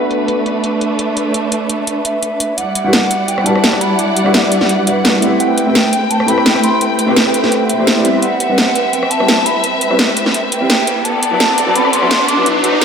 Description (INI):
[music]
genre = liquid drum and bass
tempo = 170 BPM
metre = 4/4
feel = swing 54% on 16ths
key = E minor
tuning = A4 = 440 Hz
[part]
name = felt-muted upright piano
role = accompaniment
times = 0.0-12.8 s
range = F#3 to D5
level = -17 LUFS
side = equal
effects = lush chorus, low-pass filter, tape echo
[part]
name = warm studio string section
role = sustained chords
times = 0.0-12.8 s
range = G3 to G5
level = -17 LUFS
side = equal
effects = none
[part]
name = drum and bass drum kit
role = drums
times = 0.1-12.8 s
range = hi-hat, rim click, snare drum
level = -16 LUFS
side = equal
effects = none
[part]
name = mellow hollow concert flute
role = melody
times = 2.1-12.5 s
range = E5 to D6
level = -19 LUFS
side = right 1 dB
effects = tape echo
[part]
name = riser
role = sound effects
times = 9.4-12.8 s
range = none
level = -20 LUFS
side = equal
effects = none
[sound]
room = wet lush hall reverb, RT60 2.1 s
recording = dreamy mix soaked in reverb, high-pass filter, low-pass filter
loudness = -11 LUFS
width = side -6 dB against mid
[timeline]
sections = 0.0-2.6 A section; 2.6-12.8 B section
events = filter sweep 0.0-2.6; build-up 2.6-12.8; filter sweep on felt piano 2.6-12.8; riser 9.4-12.8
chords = 0.0 Bm7; 2.6 Em9; 5.4 Am9; 8.0 Cmaj7; 11.0 Bm7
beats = 0.11 0.46 0.81 | 1.17 1.52 1.87 2.23 | 2.58 2.93 3.28 3.64 | 3.99 4.34 4.70 5.05 | 5.40 5.75 6.11 6.46 | 6.81 7.17 7.52 7.87 | 8.23 8.58 8.93 9.28 | 9.64 9.99 10.34 10.70 | 11.05 11.40 11.76 12.11 | 12.46 12.81